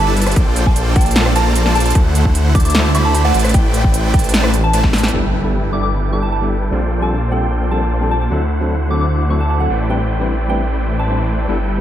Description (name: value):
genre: future bass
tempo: 151 BPM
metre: 4/4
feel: half-time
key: unclear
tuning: A4 = 439 Hz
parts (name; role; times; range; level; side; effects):
- soft synth bell; melody; 0.0-11.4 s; F#5 to D6; -23 LUFS; right 1 dB; chorus, phaser, sidechain pumping, ping-pong delay
- supersaw chords; riff; 0.0-11.8 s; D3 to B5; -20 LUFS; right 1 dB; sidechain pumping, low-pass filter
- wide detuned saw bass; bass; 0.0-11.8 s; G1 to D2; -16 LUFS; equal; chorus, sidechain pumping
- big-room dance drum kit; drums; 0.2-5.2 s; hi-hat, rim click, snare drum; -20 LUFS; equal; overdrive
- electronic kick drum; drums; 0.4-4.9 s; none; -14 LUFS; equal; overdrive
- tine electric piano; accompaniment; 5.1-11.8 s; F#3 to C5; -24 LUFS; left 2 dB; medium stereo tremolo, sidechain pumping
- impact; sound effects; 5.1-6.7 s; none; -28 LUFS; equal; none
room: digital ambience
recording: none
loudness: -13 LUFS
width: side -11 dB against mid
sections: 0.0-5.1 A section; 5.1-11.8 B section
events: drop 0.0-5.1; drum fill 4.8; band accent 5.0; impact 5.1-6.7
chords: 0.4 Bbmaj13; 2.0 D9; 3.3 Am11; 5.1 G69; 6.7 Bbmaj13; 8.3 D9; 9.7 Am11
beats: | 0.36 0.76 1.16 1.56 | 1.95 2.35 2.75 3.15 | 3.54 3.94 4.34 4.74 | 5.13 5.53 5.93 6.32 | 6.72 7.12 7.52 7.91 | 8.31 8.71 9.11 9.50 | 9.90 10.30 10.70 11.09 | 11.49